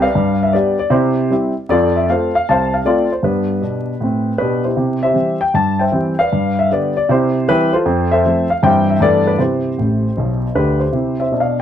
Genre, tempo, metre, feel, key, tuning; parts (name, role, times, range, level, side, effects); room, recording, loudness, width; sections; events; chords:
jazz, stride piano; 156 BPM; 4/4; swing 66% on 8ths; C major; A4 = 440 Hz
dark baby grand piano; solo; 0.0-11.6 s; A1 to A5; -13 LUFS; left 1 dB
moderate studio reverb, RT60 0.8 s; close, detailed microphones, vinyl crackle; -13 LUFS; side -9 dB against mid
0.0-10.9 A section
grand piano fill 9.8-10.9
0.2 G; 0.9 C; 1.7 F; 3.2 G; 4.8 C; 6.3 G; 7.1 C; 7.8 F; 8.6 C/G; 9.0 G69; 9.4 C